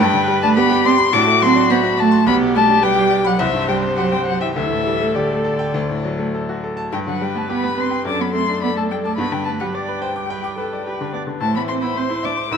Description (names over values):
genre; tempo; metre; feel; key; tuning
quick classical-period movement for piano quartet; 106 BPM; 4/4; rubato; G major; A4 = 440 Hz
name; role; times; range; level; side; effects
muted violin; melody; 0.0-12.6 s; D5 to E6; -20 LUFS; left 7 dB; none
muted cello; second line; 0.0-12.6 s; D3 to E4; -21 LUFS; right 6 dB; none
bright grand piano; accompaniment; 0.0-12.6 s; B1 to D6; -22 LUFS; left 2 dB; none
muted viola; accompaniment; 0.0-12.6 s; F#4 to D5; -24 LUFS; right 3 dB; none
room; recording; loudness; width
moderate stone room reverb, RT60 1.2 s; none; -16 LUFS; side -6 dB against mid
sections
0.0-6.9 A section; 6.9-12.6 B section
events
none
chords
0.0 G; 1.1 D7/A; 2.3 G/B; 3.4 C5; 4.6 Dsus4; 5.8 D; 6.9 G; 8.1 D/F#; 9.2 G; 11.4 Am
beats
| 0.01 0.57 1.14 1.71 | 2.27 2.83 3.40 3.97 | 4.56 5.16 5.75 6.34 | 6.92 7.50 8.07 8.63 | 9.19 9.75 10.30 10.86 | 11.41 11.96 12.51